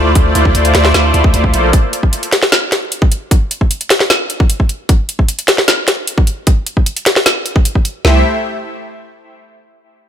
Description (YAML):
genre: future bass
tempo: 152 BPM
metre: 4/4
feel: half-time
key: C mixolydian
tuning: A4 = 440 Hz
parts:
  - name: soft supersaw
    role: riff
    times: 0.0-1.7, 8.0-8.2 s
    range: A3 to E5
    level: -15 LUFS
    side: left 1 dB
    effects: phaser, sidechain pumping, tape echo
  - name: long sustained 808-style bass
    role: bass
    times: 0.0-1.7, 8.0-8.2 s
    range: Bb1 to D2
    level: -13 LUFS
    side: equal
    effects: tube saturation, sidechain pumping
  - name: trap drum kit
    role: drums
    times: 0.2-8.1 s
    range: kick drum, snare drum, toms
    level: -11 LUFS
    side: equal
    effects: none
  - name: trap drum kit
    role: drums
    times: 0.2-7.9 s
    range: hi-hat, snare drum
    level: -13 LUFS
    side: equal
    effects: none
room: light reverb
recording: none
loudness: -10 LUFS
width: side -9 dB against mid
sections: 0.0-8.0 A section; 8.0-9.6 B section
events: none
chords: 0.0 Dm9; 1.5 Bbmaj9; 4.7 N.C.; 8.0 C6